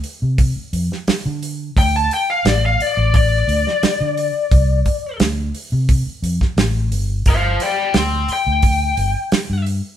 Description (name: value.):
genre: straight-eighth soul blues.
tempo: 87 BPM.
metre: 4/4.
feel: straight.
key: D minor.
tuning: A4 = 440 Hz.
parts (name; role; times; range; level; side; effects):
warm soul drum kit; drums; 0.0-9.8 s; hi-hat, kick drum, snare drum; -19 LUFS; right 1 dB; none.
vintage muted fingered electric bass; bass; 0.2-9.8 s; G1 to D3; -19 LUFS; equal; none.
lead guitar through a small cranked amp; melody; 1.8-9.6 s; C5 to C6; -18 LUFS; left 4 dB; overdrive.
room: light reverb.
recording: band playing live in one room.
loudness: -15 LUFS.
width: side -10 dB against mid.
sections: 0.0-10.0 A section.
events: lead electric guitar solo 0.0-10.0.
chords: 0.0 D7(no3); 7.3 G5.